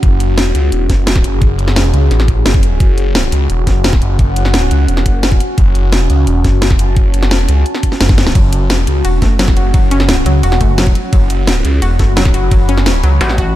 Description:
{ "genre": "dark technical drum and bass", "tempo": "173 BPM", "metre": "4/4", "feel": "straight", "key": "F# minor", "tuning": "A4 = 440 Hz", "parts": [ { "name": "deep dark ambient pad", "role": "sustained chords", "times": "0.0-13.6 s", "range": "C#4 to B5", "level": "-20 LUFS", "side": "left 1 dB", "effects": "chorus, built-in reverb, sidechain pumping" }, { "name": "phased detuned saw bass", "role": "bass", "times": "0.0-13.2 s", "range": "E1 to C#2", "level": "-12 LUFS", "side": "equal", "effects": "phaser" }, { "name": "drum and bass drum kit", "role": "drums", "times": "0.0-13.5 s", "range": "hi-hat, ride cymbal, snare drum", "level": "-18 LUFS", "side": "equal", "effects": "studio reverb" }, { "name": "electronic kick drum", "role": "drums", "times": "0.0-13.5 s", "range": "none", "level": "-12 LUFS", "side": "equal", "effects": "studio reverb" }, { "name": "analog pluck", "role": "arpeggios", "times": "8.4-13.5 s", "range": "F#3 to F#4", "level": "-19 LUFS", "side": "left 2 dB", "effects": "chorus, sidechain pumping, dub echo" }, { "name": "metallic wobble bass", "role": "bass", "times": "13.2-13.5 s", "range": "A1", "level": "-14 LUFS", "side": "equal", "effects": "distortion, chorus, tube saturation" } ], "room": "digital ambience", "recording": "dark, warm production", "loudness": "-9 LUFS", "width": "side -14 dB against mid", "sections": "0.0-13.6 A section", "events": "drum fill 8.1", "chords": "0.0 F#5" }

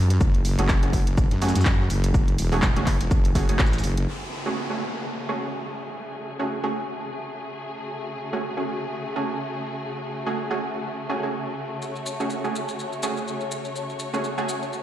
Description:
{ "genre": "bass house", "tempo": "124 BPM", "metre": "4/4", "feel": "swing 57% on 16ths", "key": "F# minor", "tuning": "A4 = 440 Hz", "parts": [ { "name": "wobble bass", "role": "bass", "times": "0.0-4.1 s", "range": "E1 to F#2", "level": "-22 LUFS", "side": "equal", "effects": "chorus, overdrive, sidechain pumping" }, { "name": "house drum kit", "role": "drums", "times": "0.1-4.2 s", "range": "crash cymbal, handclaps, hi-hat", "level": "-31 LUFS", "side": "equal", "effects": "overdrive, low-pass filter on hats, low-pass filter on snare, low-pass filter on cymbals, low-pass filter on room" }, { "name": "dusty soul sampler-style drum kit", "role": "drums", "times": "0.2-4.0 s", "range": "hi-hat, shaker, snare drum", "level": "-39 LUFS", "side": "equal", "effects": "high-pass filter on snare, sidechain pumping on perc, high-pass filter on perc, sidechain pumping on hats, high-pass filter on hats" }, { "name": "electronic kick drum", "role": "drums", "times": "0.2-3.7 s", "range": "none", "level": "-21 LUFS", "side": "equal", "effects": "overdrive" }, { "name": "orchestra-hit-like synth stab", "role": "stabs", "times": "0.6-14.4 s", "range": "A3 to G#4", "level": "-29 LUFS", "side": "right 2 dB", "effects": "built-in reverb, sidechain pumping, tape echo" }, { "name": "muted studio string section", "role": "sustained chords", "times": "4.1-14.8 s", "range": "C#3 to C#5", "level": "-32 LUFS", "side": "left 2 dB", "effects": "sidechain pumping, low-pass filter" }, { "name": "downlifter", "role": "sound effects", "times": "4.1-7.9 s", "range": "none", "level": "-36 LUFS", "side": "equal", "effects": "none" }, { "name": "maracas", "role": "percussion", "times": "11.8-14.8 s", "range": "none", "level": "-36 LUFS", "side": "left 2 dB", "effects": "none" } ], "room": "light reverb", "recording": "played on a big sound system in a bare room, stone room reverb", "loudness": "-23 LUFS", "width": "side -12 dB against mid", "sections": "0.0-4.1 A section; 4.1-14.8 B section", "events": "none", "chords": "0.0 F#madd9" }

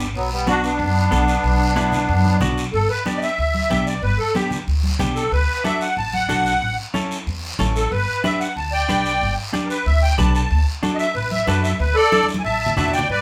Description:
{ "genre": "latin, cumbia", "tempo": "185 BPM", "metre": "4/4", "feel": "straight", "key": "unclear", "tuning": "A4 = 441 Hz", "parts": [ { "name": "clean electric guitar", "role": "accompaniment", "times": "0.0-13.0 s", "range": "B3 to D5", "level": "-27 LUFS", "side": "equal", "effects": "none" }, { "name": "upright bass", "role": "bass", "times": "0.0-13.2 s", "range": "G1 to G2", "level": "-23 LUFS", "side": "equal", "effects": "none" }, { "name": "musette accordion", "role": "melody", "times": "0.2-13.2 s", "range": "F#3 to A5", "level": "-22 LUFS", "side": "equal", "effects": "none" }, { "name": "guiro", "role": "percussion", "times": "0.2-13.2 s", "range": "none", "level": "-34 LUFS", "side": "equal", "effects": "none" }, { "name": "congas", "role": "percussion", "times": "0.5-13.1 s", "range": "none", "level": "-30 LUFS", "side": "equal", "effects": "none" } ], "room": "wet studio reverb, RT60 0.5 s", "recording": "band playing live in one room", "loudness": "-20 LUFS", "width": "mono", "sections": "0.0-2.7 A section; 2.7-13.1 B section", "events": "accordion solo 2.7-13.1; drum fill 12.1-13.1", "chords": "0.1 Bm; 2.7 G; 5.3 D; 6.6 A; 7.9 G; 10.5 D; 11.8 Dsus2" }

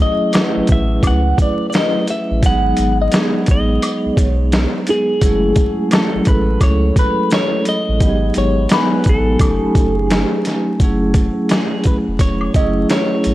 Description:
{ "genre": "lo-fi hip hop", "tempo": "86 BPM", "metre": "4/4", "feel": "swing 62% on 16ths", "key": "F# dorian", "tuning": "A4 = 441 Hz", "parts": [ { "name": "clean electric guitar", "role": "melody", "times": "0.0-13.3 s", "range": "G#4 to F#5", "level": "-20 LUFS", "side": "left 1 dB", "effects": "phaser, low-pass filter" }, { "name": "vibraphone with medium mallets", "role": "accompaniment", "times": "0.0-13.3 s", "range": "F#3 to G#5", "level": "-18 LUFS", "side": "right 1 dB", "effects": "cassette tape, low-pass filter" }, { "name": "boom bap sampler-style drum kit", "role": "drums", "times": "0.3-13.3 s", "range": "hi-hat, kick drum, snare drum", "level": "-16 LUFS", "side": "equal", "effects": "none" }, { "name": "maracas and woodblock", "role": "percussion", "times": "0.3-13.3 s", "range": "none", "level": "-30 LUFS", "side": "left 1 dB", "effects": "none" }, { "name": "warm sub bass", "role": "bass", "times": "0.6-13.3 s", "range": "E1 to C#2", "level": "-18 LUFS", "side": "equal", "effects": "none" } ], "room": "digital ambience", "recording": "dry, gritty hardware recording, vinyl crackle", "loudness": "-13 LUFS", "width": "side -16 dB against mid", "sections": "0.0-10.8 A section; 10.8-13.3 B section", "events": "none", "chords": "0.0 F#m9; 2.4 G#m7; 5.2 F#m9; 8.0 G#m7; 9.4 F#m69; 10.8 F#m9" }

